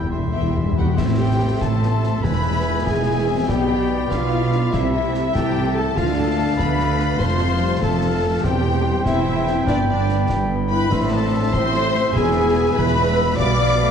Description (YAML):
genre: cinematic, heroic adventure film score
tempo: 97 BPM (dotted quarters)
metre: 12/8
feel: straight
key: A minor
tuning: A4 = 439 Hz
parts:
  - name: rich symphonic violin section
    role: melody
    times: 0.0-13.9 s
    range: D5 to D6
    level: -29 LUFS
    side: left 5 dB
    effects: none
  - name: clear clarinet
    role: second line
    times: 0.0-13.9 s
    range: E4 to G5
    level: -34 LUFS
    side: left 3 dB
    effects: none
  - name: dark symphonic violin section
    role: second line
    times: 0.0-13.9 s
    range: G3 to D6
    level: -33 LUFS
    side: left 4 dB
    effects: none
  - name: mellow large flute ensemble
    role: second line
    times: 0.0-13.9 s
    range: D5 to D6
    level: -31 LUFS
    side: left 2 dB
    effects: none
  - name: warm oboe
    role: second line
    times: 0.0-13.9 s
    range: G5 to C6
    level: -32 LUFS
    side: right 1 dB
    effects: none
  - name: rich symphonic viola section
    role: accompaniment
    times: 0.0-13.9 s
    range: G3 to D5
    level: -24 LUFS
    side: left 1 dB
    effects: none
  - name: warm trumpet section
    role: stabs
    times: 0.0-13.9 s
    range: E4 to G5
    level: -30 LUFS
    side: equal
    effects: none
  - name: rich symphonic cello section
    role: bass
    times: 0.0-13.9 s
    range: E2 to D3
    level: -24 LUFS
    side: right 2 dB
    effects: none
  - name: rich symphonic double bass section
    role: bass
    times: 0.0-13.9 s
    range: E1 to D2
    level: -24 LUFS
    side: right 2 dB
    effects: none
  - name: timpani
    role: percussion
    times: 0.0-2.8 s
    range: E2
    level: -24 LUFS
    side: left 2 dB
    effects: none
  - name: mellow French horn section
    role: sustained chords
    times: 0.1-13.9 s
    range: F3 to E4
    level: -28 LUFS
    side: left 6 dB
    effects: none
  - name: mellow trombone section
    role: sustained chords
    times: 0.1-13.9 s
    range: A2 to C4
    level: -30 LUFS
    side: right 3 dB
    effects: none
  - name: concert snare drum, clash cymbals and concert bass drum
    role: drums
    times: 1.0-13.6 s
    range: none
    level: -27 LUFS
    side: left 1 dB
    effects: none
room: wet scoring stage reverb, RT60 1.7 s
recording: dark, warm production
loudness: -17 LUFS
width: side -7 dB against mid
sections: 1.0-13.9 A section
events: timpani fill 0.0-1.0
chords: 0.0 Em; 1.0 Am; 2.2 E; 3.5 Bdim; 4.7 Am/C; 6.0 Dm; 7.2 F; 8.4 C/E; 9.7 G; 10.9 Am; 12.1 E; 13.4 Bdim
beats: 0.34 | 0.98 1.61 2.23 2.86 | 3.48 4.11 4.73 5.35 | 5.97 6.59 7.21 7.83 | 8.44 9.06 9.68 10.30 | 10.91 11.53 12.15 12.77 | 13.39